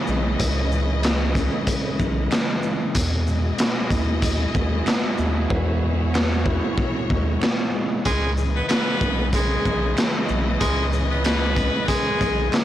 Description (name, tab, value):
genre	hip hop, boom-bap hip-hop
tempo	94 BPM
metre	4/4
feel	swing 55% on 16ths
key	C# minor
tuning	A4 = 438 Hz
part	mellow tine electric piano	accompaniment	0.0-12.6 s	B2 to E4	-28 LUFS	equal	medium stereo tremolo, cassette tape, high-pass filter, low-pass filter
part	warm studio string section	sustained chords	0.0-12.6 s	C#3 to D#5	-29 LUFS	left 2 dB	high-pass filter, low-pass filter
part	round analog bass	bass	0.1-12.5 s	B1 to E2	-24 LUFS	equal	tube saturation
part	raw garage drum kit	drums	0.1-12.6 s	handclaps, hi-hat, kick drum, shaker, snare drum	-23 LUFS	equal	none
part	finger snaps	percussion	1.0-12.6 s	none	-36 LUFS	right 4 dB	none
part	edgy saxophone section	stabs	8.1-12.5 s	G#3 to B4	-24 LUFS	left 1 dB	high-pass filter, low-pass filter, ping-pong delay
room	small room ambience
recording	blown-out, overdriven recording, overdrive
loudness	-19 LUFS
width	side -12 dB against mid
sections	0.0-12.6 A section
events	hi-hats muted 5.5-8.1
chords	0.0 C#m7; 3.0 Emaj7; 8.1 C#m7